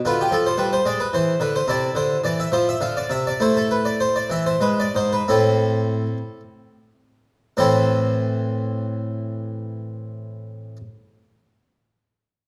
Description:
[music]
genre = classical, baroque-style suite movement for harpsichord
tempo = 49-74 BPM (dotted quarters)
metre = 6/8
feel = rubato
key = A minor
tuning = A4 = 440 Hz
[part]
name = harpsichord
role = solo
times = 0.1-10.8 s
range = G#2 to F5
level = -22 LUFS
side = equal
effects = none
[sound]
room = wet recital hall reverb, RT60 1.7 s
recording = dark, warm production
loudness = -21 LUFS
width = mono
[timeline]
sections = 0.0-7.6 A section; 7.6-12.1 B section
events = slowing down 2.5-7.6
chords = 0.0 Dmadd11; 0.9 E7; 1.7 Cadd9; 2.5 Dm; 3.4 A5; 4.3 E; 5.3 Am

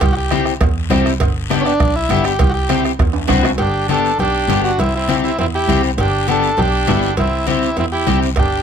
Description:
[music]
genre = latin, cumbia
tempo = 201 BPM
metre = 4/4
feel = straight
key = unclear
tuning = A4 = 440 Hz
[part]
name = overdriven combo organ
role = melody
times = 0.0-8.6 s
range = C#4 to A4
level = -19 LUFS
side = equal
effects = none
[part]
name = warm double bass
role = bass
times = 0.0-8.6 s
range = G1 to E2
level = -20 LUFS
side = equal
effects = none
[part]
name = bombo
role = percussion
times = 0.0-3.6, 8.4-8.5 s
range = none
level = -18 LUFS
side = right 2 dB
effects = none
[part]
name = congas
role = percussion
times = 0.0-8.5 s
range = none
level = -25 LUFS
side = left 5 dB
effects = none
[part]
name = cowbell and timbales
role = percussion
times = 0.0-8.5 s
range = none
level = -25 LUFS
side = right 4 dB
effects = none
[part]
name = guiro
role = percussion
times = 0.0-8.6 s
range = none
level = -31 LUFS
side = left 8 dB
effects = none
[part]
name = electric guitar at the edge of break-up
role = accompaniment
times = 0.3-8.3 s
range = B3 to G4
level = -19 LUFS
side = left 4 dB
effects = analog chorus
[part]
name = bright trumpet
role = second line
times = 3.6-8.6 s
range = C4 to E4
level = -24 LUFS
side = right 6 dB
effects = none
[sound]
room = light reverb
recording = close, detailed microphones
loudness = -14 LUFS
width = side -8 dB against mid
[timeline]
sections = 0.0-3.6 A section; 3.6-8.6 B section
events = transistor combo organ solo 0.0-3.6; drum fill 3.1-3.6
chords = 0.0 C; 1.2 G; 2.4 C; 3.6 G; 4.8 C; 6.0 G; 7.2 C

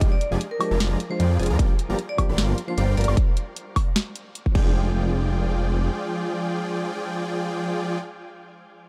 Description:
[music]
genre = future bass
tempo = 152 BPM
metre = 4/4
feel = swing 54% on 16ths, half-time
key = F dorian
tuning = A4 = 440 Hz
[part]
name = bright tine electric piano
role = accompaniment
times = 0.0-8.0 s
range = F3 to G5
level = -34 LUFS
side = equal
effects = sidechain pumping, delay
[part]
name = supersaw chords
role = riff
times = 0.0-8.0 s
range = F3 to C6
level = -31 LUFS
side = equal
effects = sidechain pumping, delay
[part]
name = detuned saw bass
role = bass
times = 0.0-5.9 s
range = F1 to F2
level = -25 LUFS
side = equal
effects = chorus, sidechain pumping
[part]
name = electronic kick drum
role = drums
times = 0.0-4.6 s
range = none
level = -23 LUFS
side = equal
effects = none
[part]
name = trap drum kit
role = drums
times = 0.0-4.6 s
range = crash cymbal, hi-hat, snare drum, woodblock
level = -30 LUFS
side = equal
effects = none
[part]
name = vibraphone with medium hard mallets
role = melody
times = 0.1-3.1 s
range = Bb4 to D5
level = -34 LUFS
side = equal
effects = sidechain pumping, delay
[sound]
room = digital ambience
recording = dark, warm production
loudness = -24 LUFS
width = mono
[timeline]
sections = 0.0-4.8 A section; 4.8-7.9 B section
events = drop 0.0-4.8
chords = 0.0 Fm69; 1.6 Gm7; 3.2 N.C.; 4.6 Fm69

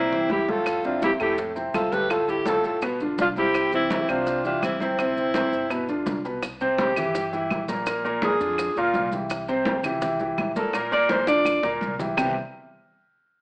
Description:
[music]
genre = Afro-Cuban jazz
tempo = 167 BPM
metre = 4/4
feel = straight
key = C major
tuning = A4 = 440 Hz
[part]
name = breathy alto saxophone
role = melody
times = 0.0-11.8 s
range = E4 to D5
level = -24 LUFS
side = equal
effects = none
[part]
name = breathy tenor saxophone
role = second line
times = 0.0-5.7 s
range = C4 to G4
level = -28 LUFS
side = equal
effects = none
[part]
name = warm upright piano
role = accompaniment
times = 0.0-12.3 s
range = A2 to C5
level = -26 LUFS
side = equal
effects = none
[part]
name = upright bass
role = bass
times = 0.0-12.3 s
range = G1 to G2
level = -41 LUFS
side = equal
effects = none
[part]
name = bongos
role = percussion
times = 0.1-12.3 s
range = none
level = -35 LUFS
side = left 1 dB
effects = none
[part]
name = congas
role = percussion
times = 0.1-12.3 s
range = none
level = -32 LUFS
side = equal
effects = none
[part]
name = claves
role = percussion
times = 0.7-12.3 s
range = none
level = -31 LUFS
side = right 1 dB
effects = none
[part]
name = maracas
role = percussion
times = 0.7-12.3 s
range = none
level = -44 LUFS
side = right 1 dB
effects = none
[sound]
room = moderate large studio reverb, RT60 0.9 s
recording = AM radio sound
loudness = -21 LUFS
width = side -29 dB against mid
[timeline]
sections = 0.0-6.4 A section; 6.4-12.2 B section; 12.2-13.4 C section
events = drum fill 0.1-0.7, 11.3-12.2; alto saxophone solo 6.4-12.2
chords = 0.0 C6; 0.7 Fmaj7; 2.1 D5; 2.8 G7; 3.5 Cadd9; 5.7 G6; 6.4 C; 7.9 Bb7; 9.3 C; 10.7 Bb; 12.2 Cmaj7

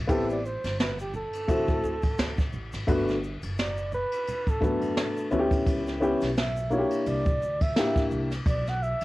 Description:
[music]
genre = hip hop, jazz-hop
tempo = 86 BPM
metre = 4/4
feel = swing 57% on 16ths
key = unclear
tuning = A4 = 440 Hz
[part]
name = upright bass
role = bass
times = 0.0-9.0 s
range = F#1 to F#2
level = -34 LUFS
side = equal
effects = none
[part]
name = mellow flugelhorn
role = melody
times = 0.1-9.0 s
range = G4 to F#5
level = -31 LUFS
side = right 2 dB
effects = cassette tape
[part]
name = dark upright piano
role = accompaniment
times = 0.1-8.3 s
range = A3 to G4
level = -26 LUFS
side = left 1 dB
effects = cassette tape
[part]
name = jazz brush drum kit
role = drums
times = 0.1-9.0 s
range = hi-hat, kick drum, ride cymbal, snare drum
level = -29 LUFS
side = equal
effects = cassette tape
[part]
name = tube shaker and congas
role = percussion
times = 0.1-9.0 s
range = none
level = -44 LUFS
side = right 2 dB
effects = none
[sound]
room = light reverb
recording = home recording on cassette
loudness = -24 LUFS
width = side -18 dB against mid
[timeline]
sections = 0.0-9.0 A section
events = none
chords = 0.1 Am9; 1.5 D7; 2.9 Gmaj9; 5.7 C#m7b5; 7.1 C9; 8.5 Bm

